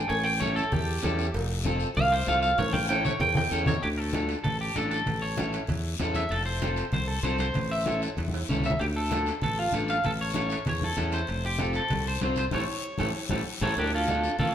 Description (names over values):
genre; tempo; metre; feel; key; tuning
latin, cumbia; 193 BPM; 4/4; straight; D harmonic minor; A4 = 440 Hz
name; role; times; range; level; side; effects
electric guitar at the edge of break-up; melody; 0.0-14.5 s; D4 to G5; -29 LUFS; equal; spring reverb
modern bright fingered electric bass; bass; 0.0-14.5 s; F1 to E2; -31 LUFS; equal; none
congas; percussion; 0.1-14.5 s; none; -33 LUFS; equal; none
cowbell and timbales; percussion; 0.1-14.5 s; none; -39 LUFS; right 3 dB; none
guiro; percussion; 0.1-14.5 s; none; -40 LUFS; left 5 dB; none
electric guitar at the edge of break-up; accompaniment; 0.4-14.3 s; C4 to C5; -33 LUFS; left 1 dB; none
room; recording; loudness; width
wet stone room reverb, RT60 1.3 s; band playing live in one room; -25 LUFS; side -10 dB against mid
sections
0.0-3.8 A section; 3.8-13.8 B section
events
clean electric guitar solo 0.0-3.8; drum fill 2.6-3.8, 8.2-8.8, 12.8-13.8; band accent 12.5-13.8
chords
0.1 A7; 1.3 F; 2.6 A7; 3.8 Dm; 5.1 A; 6.3 F; 7.6 A; 8.8 Dm; 10.0 A; 11.3 F; 12.5 A7; 13.8 Dm